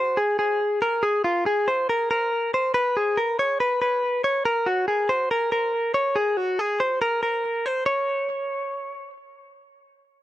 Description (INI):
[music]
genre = indie pop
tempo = 140 BPM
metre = 4/4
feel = straight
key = unclear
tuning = A4 = 439 Hz
[part]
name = direct-recorded clean electric guitar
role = arpeggios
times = 0.0-9.1 s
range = F4 to Db5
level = -21 LUFS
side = equal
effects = tape echo
[sound]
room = light reverb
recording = dry, close 1970s-style studio recording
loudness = -21 LUFS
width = side -14 dB against mid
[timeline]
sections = 0.0-7.9 A section; 7.9-10.2 B section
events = none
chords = none